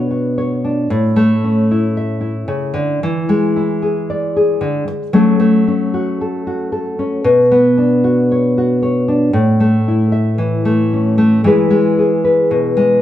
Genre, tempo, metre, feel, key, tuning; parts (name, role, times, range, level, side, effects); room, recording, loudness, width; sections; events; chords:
highlife; 114 BPM; 4/4; straight; A major; A4 = 439 Hz
nylon-string guitar; solo; 0.0-13.0 s; A2 to E5; -12 LUFS; left 1 dB
moderate large studio reverb, RT60 1.2 s; band playing live in one room; -12 LUFS; side -12 dB against mid
0.0-9.3 A section; 9.3-13.0 B section
0.0 Bmadd9; 0.9 A; 3.0 E; 5.1 F#m; 7.2 Bmadd9; 9.3 A; 11.4 E